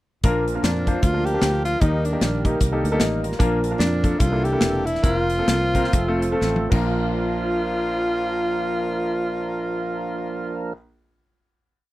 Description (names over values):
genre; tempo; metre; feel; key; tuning
uptempo gospel; 114-152 BPM; 4/4; swing 60% on 8ths; Bb major; A4 = 440 Hz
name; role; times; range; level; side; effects
clear concert grand piano; accompaniment; 0.2-10.8 s; Bb1 to Eb5; -26 LUFS; left 1 dB; none
muted French horn section; sustained chords; 0.2-10.7 s; D3 to A4; -35 LUFS; left 1 dB; none
percussive tonewheel organ; sustained chords; 0.2-10.7 s; D3 to Bb4; -29 LUFS; right 3 dB; fast rotary speaker
fingered electric bass; bass; 0.2-10.7 s; E1 to F2; -25 LUFS; equal; none
modern studio drum kit; drums; 0.2-6.8 s; crash cymbal, hi-hat, kick drum, snare drum, toms; -23 LUFS; equal; none
breathy tenor saxophone; melody; 0.6-10.7 s; D4 to G4; -25 LUFS; equal; none
room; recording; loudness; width
light reverb; none; -19 LUFS; side -16 dB against mid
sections
0.2-6.9 breakdown; 6.9-11.1 final hit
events
slowing down 3.4-6.9; drum fill 6.4-6.9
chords
0.2 Bb; 1.8 Eb; 3.4 Bb; 4.2 C13; 5.0 Fsus4; 5.9 F; 6.7 Bb